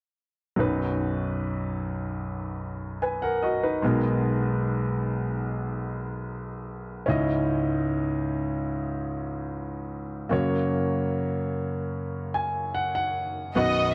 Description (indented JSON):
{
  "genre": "pop ballad",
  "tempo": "74 BPM",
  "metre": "4/4",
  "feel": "straight",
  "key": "B major",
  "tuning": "A4 = 440 Hz",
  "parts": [
    { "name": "clear grand piano", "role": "accompaniment", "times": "0.6-13.9 s", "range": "B1 to G#5", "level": "-28 LUFS", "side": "equal", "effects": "none" },
    { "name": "warm studio violin section", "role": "melody", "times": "13.5-13.9 s", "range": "D#5", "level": "-25 LUFS", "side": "equal", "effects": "none" },
    { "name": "bright studio string section", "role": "sustained chords", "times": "13.6-13.9 s", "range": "D#3 to F#5", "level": "-37 LUFS", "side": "equal", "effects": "none" }
  ],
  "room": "light reverb, small room ambience",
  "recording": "dry, close 1970s-style studio recording",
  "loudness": "-28 LUFS",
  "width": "mono",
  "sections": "0.6-13.6 A section",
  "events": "grand piano fill 11.9-13.6",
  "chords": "0.6 B; 3.8 G#madd9/B; 7.1 C#madd9; 10.3 F#",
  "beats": "| 0.58 1.39 2.20 3.01 | 3.82 4.63 5.45 6.26 | 7.07 7.88 8.69 9.50 | 10.31 11.12 11.93 12.74 | 13.55"
}